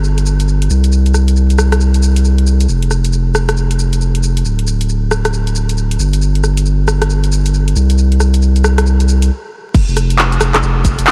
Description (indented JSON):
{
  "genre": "UK garage, two-step garage",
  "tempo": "136 BPM",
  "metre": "4/4",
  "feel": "swing 62% on 16ths",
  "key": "unclear",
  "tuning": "A4 = 440 Hz",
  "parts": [
    { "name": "saturated sub bass", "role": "bass", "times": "0.0-11.1 s", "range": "D1 to C2", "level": "-14 LUFS", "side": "equal", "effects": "none" },
    { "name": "garage drum kit", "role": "drums", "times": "0.0-11.1 s", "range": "crash cymbal, handclaps, hi-hat, rim click, shaker", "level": "-21 LUFS", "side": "equal", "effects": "studio reverb" },
    { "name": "electronic kick drum", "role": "drums", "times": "9.7-11.0 s", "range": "none", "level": "-13 LUFS", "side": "equal", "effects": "studio reverb" }
  ],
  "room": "digital ambience",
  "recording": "vinyl crackle",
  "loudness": "-13 LUFS",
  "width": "mono",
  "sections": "0.0-9.7 A section; 9.7-11.1 B section",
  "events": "stop 9.3-9.7; drop 9.7-11.1",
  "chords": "none"
}